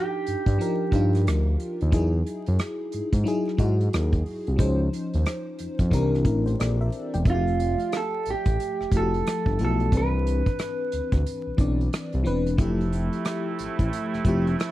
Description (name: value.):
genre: R&B, neo-soul.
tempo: 90 BPM.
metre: 4/4.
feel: swing 62% on 16ths.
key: F lydian from 7.3 s.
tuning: A4 = 440 Hz.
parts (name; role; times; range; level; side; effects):
electric guitar through a small old amp; melody; 0.0-1.2, 7.3-11.9 s; F4 to B4; -28 LUFS; right 4 dB; none.
FM electric piano with soft pad layer; accompaniment; 0.0-14.7 s; E3 to G5; -28 LUFS; left 2 dB; chorus, tremolo.
smooth gliding synth bass; bass; 0.3-14.6 s; E1 to G#2; -24 LUFS; equal; none.
unplugged drum kit; drums; 0.3-14.7 s; hi-hat, kick drum, rim click; -25 LUFS; equal; none.
mellow horn section; stabs; 12.6-14.7 s; C3 to E4; -32 LUFS; right 7 dB; none.
room: small room reverb.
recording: dry, close 1970s-style studio recording, vinyl crackle.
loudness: -22 LUFS.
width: side -15 dB against mid.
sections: 0.0-7.3 A section; 7.3-14.7 B section.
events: none.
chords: 0.0 Ebmaj9; 1.9 Emaj9; 4.6 Dbmaj9; 5.9 C9; 7.3 Fmaj9; 9.9 Cmaj9; 12.6 Fmaj9.